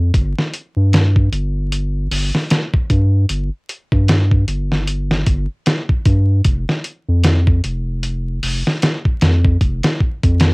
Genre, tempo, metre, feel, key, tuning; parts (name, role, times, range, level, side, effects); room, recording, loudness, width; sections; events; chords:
trip hop; 76 BPM; 4/4; swing 58% on 16ths; A4 = 439 Hz
round analog bass; bass; 0.0-10.5 s; F1 to G2; -15 LUFS; equal
dusty soul sampler-style drum kit; drums; 0.1-10.5 s; hi-hat, kick drum, snare drum; -16 LUFS; equal
light reverb; home recording on cassette, vinyl crackle; -14 LUFS; side -33 dB against mid
0.0-10.5 A section